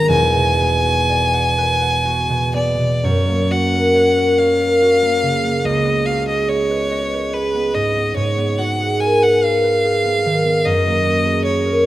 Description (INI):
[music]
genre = classical, impressionist duo for violin and harp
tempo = 59-76 BPM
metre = 3/4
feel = rubato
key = unclear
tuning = A4 = 440 Hz
[part]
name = clear violin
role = melody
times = 0.0-11.9 s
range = Cb5 to Bb5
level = -19 LUFS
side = equal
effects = none
[part]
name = concert harp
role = accompaniment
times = 0.0-11.9 s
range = E1 to Ab5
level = -16 LUFS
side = equal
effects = none
[sound]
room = light reverb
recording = close, detailed microphones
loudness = -14 LUFS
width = side -14 dB against mid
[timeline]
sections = 0.0-3.0 A section; 3.0-11.9 B section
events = none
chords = 0.1 E9; 3.0 Gbmaj7; 5.6 Db11; 8.2 Abm9; 10.6 Gb69